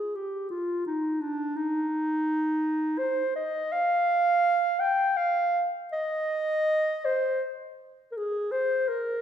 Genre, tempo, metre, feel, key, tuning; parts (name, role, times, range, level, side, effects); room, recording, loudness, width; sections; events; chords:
classical, free, expressive piece for unaccompanied clarinet; 82 BPM; 3/4; uneven beats, rubato; A4 = 441 Hz
warm clarinet; solo; 0.0-9.2 s; D4 to G5; -25 LUFS; equal
wet recital hall reverb, RT60 1.6 s; heard from further back in the room; -24 LUFS; side -9 dB against mid
0.0-9.2 A section